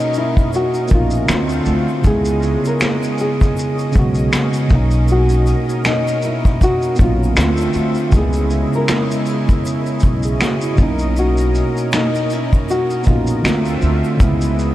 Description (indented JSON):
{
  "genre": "lo-fi hip hop",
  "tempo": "79 BPM",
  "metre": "4/4",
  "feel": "swing 58% on 16ths",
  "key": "C# dorian",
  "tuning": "A4 = 440 Hz",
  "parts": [
    { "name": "nylon-string guitar", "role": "melody", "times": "0.0-13.6 s", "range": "D#4 to A#4", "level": "-22 LUFS", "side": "left 1 dB", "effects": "none" },
    { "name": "mellow tine electric piano", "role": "accompaniment", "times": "0.0-14.7 s", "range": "B2 to G#4", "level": "-19 LUFS", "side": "right 2 dB", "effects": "fast stereo tremolo" },
    { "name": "lush unison pad", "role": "sustained chords", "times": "0.0-14.7 s", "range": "C#3 to E5", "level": "-25 LUFS", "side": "left 1 dB", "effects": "chorus" },
    { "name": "vintage brush drum kit", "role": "drums", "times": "0.1-14.7 s", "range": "finger snaps, hi-hat, kick drum, shaker, snare drum", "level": "-18 LUFS", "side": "equal", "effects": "none" },
    { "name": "egg shaker", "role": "percussion", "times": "0.1-14.6 s", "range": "none", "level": "-44 LUFS", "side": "left 6 dB", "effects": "none" },
    { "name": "upright bass", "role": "bass", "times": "0.9-14.7 s", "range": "A#1 to D2", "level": "-18 LUFS", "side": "equal", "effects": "none" }
  ],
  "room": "moderate huge ambient reverb, RT60 7.7 s",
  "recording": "dreamy mix soaked in reverb, cassette tape",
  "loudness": "-14 LUFS",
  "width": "side -14 dB against mid",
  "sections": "0.0-14.7 A section",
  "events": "none",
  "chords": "0.0 Bmaj9; 1.3 Dm7; 2.0 C#m7; 4.7 Bmaj9; 7.4 Dm7; 8.1 C#m7; 10.8 Bmaj9; 13.4 Dm7; 14.2 C#m7"
}